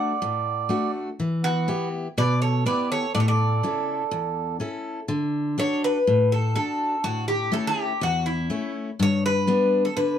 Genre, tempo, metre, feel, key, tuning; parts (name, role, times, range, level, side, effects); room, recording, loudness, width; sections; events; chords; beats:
greek folk, Greek bouzouki band; 123 BPM; 4/4; straight; D major; A4 = 441 Hz
Greek bouzouki; melody; 0.0-10.2 s; E4 to F#5; -25 LUFS; left 2 dB
mellow accordion; second line; 0.0-4.6 s; B3 to D5; -27 LUFS; right 10 dB
picked steel-string acoustic guitar; accompaniment; 0.0-10.2 s; E2 to A4; -24 LUFS; left 1 dB
moderate studio reverb, RT60 0.5 s; dark, warm production; -22 LUFS; side -9 dB against mid
0.0-5.1 A section; 5.1-10.2 B section
0.0 D; 1.2 Em; 3.1 A; 5.1 D; 7.0 A; 9.0 G
0.21 0.70 | 1.19 1.68 2.16 2.65 | 3.14 3.63 4.11 4.60 | 5.09 5.58 6.06 6.55 | 7.04 7.53 8.02 8.50 | 8.99 9.48 9.97